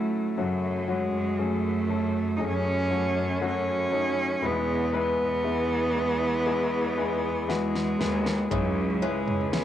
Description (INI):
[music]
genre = pop ballad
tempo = 59 BPM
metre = 4/4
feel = straight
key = unclear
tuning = A4 = 436 Hz
[part]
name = rich cello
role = melody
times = 0.0-9.6 s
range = F#3 to D#4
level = -27 LUFS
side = right 3 dB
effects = cassette tape
[part]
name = warm baby grand piano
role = accompaniment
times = 0.0-9.6 s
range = G#2 to B4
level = -30 LUFS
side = left 7 dB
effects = cassette tape
[part]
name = bright studio cello section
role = bass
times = 0.4-9.6 s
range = C#2 to F#2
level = -31 LUFS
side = equal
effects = none
[part]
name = pop drum kit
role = drums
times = 7.5-9.6 s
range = kick drum, snare drum, toms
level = -31 LUFS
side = right 1 dB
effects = cassette tape
[part]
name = picked steel-string acoustic guitar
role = arpeggios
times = 8.5-9.6 s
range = C#3 to E4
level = -33 LUFS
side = right 9 dB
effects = cassette tape, tape echo
[sound]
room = moderate spring reverb, RT60 2.2 s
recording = home recording on cassette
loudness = -24 LUFS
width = side -11 dB against mid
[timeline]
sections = 0.4-9.6 A section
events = drum fill 7.5-8.5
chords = 0.4 F#m; 4.4 E; 8.5 C#m